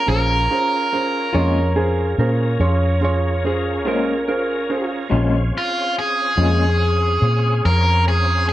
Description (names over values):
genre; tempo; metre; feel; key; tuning
slow blues; 48 BPM (dotted quarters); 12/8; straight; Bb minor; A4 = 440 Hz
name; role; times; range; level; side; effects
overdriven electric guitar; melody; 0.0-8.5 s; F4 to Bb4; -20 LUFS; equal; spring reverb
tonewheel organ; sustained chords; 0.0-8.5 s; C4 to Bb4; -29 LUFS; equal; slow rotary speaker, chorus vibrato
vintage muted fingered electric bass; bass; 0.0-8.5 s; Bb1 to Bb2; -18 LUFS; equal; none
clear baby grand piano; accompaniment; 0.1-5.0 s; Db4 to C6; -24 LUFS; right 3 dB; none
electric slide guitar; second line; 1.3-4.9 s; Ab4 to Db5; -23 LUFS; right 2 dB; none
electric guitar through a small old amp; accompaniment; 1.3-6.6 s; Bb2 to F4; -22 LUFS; left 4 dB; tremolo
room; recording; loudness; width
light reverb; none; -16 LUFS; side -14 dB against mid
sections
0.0-5.1 A section; 5.1-8.5 A section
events
none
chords
0.0 Bbm7